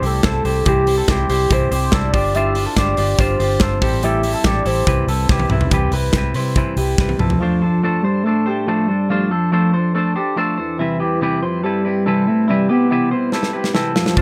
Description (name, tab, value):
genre	jangly indie pop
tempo	142 BPM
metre	4/4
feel	straight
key	C major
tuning	A4 = 440 Hz
part	warm velvety synth lead	melody	0.0-14.2 s	E3 to E5	-21 LUFS	equal	chorus
part	clean electric guitar	accompaniment	0.0-14.2 s	A2 to C5	-25 LUFS	equal	none
part	electric guitar through a small old amp	arpeggios	0.0-14.2 s	E4 to C5	-26 LUFS	equal	none
part	vintage muted fingered electric bass	bass	0.0-7.4, 14.2 s	F1 to C3	-23 LUFS	equal	none
part	modern studio drum kit	drums	0.0-7.4, 13.3-14.2 s	hi-hat, kick drum, snare drum, toms	-22 LUFS	equal	none
room	light reverb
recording	none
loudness	-17 LUFS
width	mono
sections	0.0-5.7 A section; 5.7-7.4 B section; 7.4-14.2 C section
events	drum fill 5.3-5.7, 7.0-7.4, 13.3-14.2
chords	0.0 C; 2.1 G7sus4; 3.8 Am7; 4.9 Cmaj7; 7.4 F6; 10.8 Cmaj7